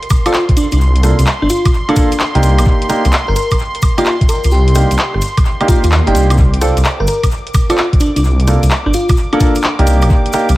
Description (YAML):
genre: UK garage, two-step garage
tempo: 129 BPM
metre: 4/4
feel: swing 66% on 16ths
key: C dorian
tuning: A4 = 441 Hz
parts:
  - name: warm analog pad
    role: sustained chords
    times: 0.0-10.6 s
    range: C6 to D6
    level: -25 LUFS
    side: right 1 dB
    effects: chorus, sidechain pumping
  - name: house drum kit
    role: drums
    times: 0.0-10.6 s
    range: handclaps, hi-hat, rim click, woodblock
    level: -19 LUFS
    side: equal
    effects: studio reverb, tape echo
  - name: electronic kick drum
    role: drums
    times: 0.1-10.2 s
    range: none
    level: -12 LUFS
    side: equal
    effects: studio reverb
  - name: cabasa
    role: percussion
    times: 0.1-10.6 s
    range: none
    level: -30 LUFS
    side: left 2 dB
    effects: tape echo
  - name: bell-like FM electric piano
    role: melody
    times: 0.3-9.9 s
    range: D4 to Bb4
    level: -19 LUFS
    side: left 1 dB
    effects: chorus, vintage 12-bit sampler grit, tape echo
  - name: dark baby grand piano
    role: stabs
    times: 0.3-10.5 s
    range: Bb3 to A4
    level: -18 LUFS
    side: right 2 dB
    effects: tape echo
  - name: dark detuned saw bass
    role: bass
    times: 0.7-10.5 s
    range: G1 to Eb2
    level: -12 LUFS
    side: equal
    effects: none
  - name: swell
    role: sound effects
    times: 5.6-6.4 s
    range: none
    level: -26 LUFS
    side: equal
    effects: none
room: light reverb, digital ambience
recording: echo-heavy mix, vinyl crackle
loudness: -10 LUFS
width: side -17 dB against mid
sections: 0.0-10.6 A section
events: swell 5.6-6.4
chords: 0.0 G7sus4 (rootless); 0.8 Gm9 (rootless); 2.4 Cm7; 6.4 Gsus4 (rootless); 8.2 Gm9 (rootless); 9.9 Cm7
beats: 0.34 | 0.80 1.26 1.73 2.19 | 2.66 3.12 3.59 4.06 | 4.52 4.99 5.45 5.92 | 6.38 6.85 7.31 7.78 | 8.24 8.71 9.17 9.64 | 10.10 10.57